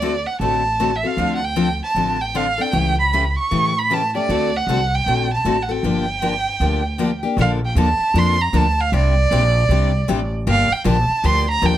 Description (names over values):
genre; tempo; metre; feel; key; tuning
acoustic string swing (jazz manouche); 155 BPM; 4/4; swing 61% on 8ths; G minor, Bb major from 7.4 s; A4 = 441 Hz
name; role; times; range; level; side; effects
warm violin; melody; 0.0-11.8 s; D5 to C#6; -20 LUFS; right 3 dB; none
picked steel-string acoustic guitar; accompaniment; 0.0-11.7 s; C3 to A4; -21 LUFS; left 4 dB; none
upright bass; bass; 0.0-11.8 s; G1 to A2; -21 LUFS; equal; none
room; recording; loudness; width
light reverb; none; -16 LUFS; side -12 dB against mid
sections
0.0-7.4 A section; 7.4-11.8 B section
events
none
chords
0.0 D7; 1.2 Dm7; 2.7 A7/C#; 4.3 D7; 5.8 Gm7; 7.4 Bbmaj7; 8.9 Csus2; 10.5 Gm7